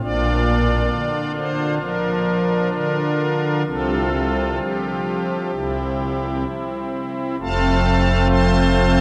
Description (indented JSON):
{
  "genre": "classical, chorale-style piece for pipe organ",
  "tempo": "63-68 BPM",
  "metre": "4/4",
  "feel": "rubato",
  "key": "F major",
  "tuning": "A4 = 445 Hz",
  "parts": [
    { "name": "pipe organ, strings celeste", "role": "solo", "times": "0.0-9.0 s", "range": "F1 to C6", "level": "-20 LUFS", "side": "equal", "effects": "none" }
  ],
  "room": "wet cathedral reverb, RT60 6.8 s",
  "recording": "dark, warm production",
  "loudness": "-20 LUFS",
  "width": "mono",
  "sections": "0.0-7.4 A section; 7.4-9.0 A section",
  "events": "none",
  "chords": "0.0 Bb; 3.7 Csus4; 5.5 C; 7.4 F"
}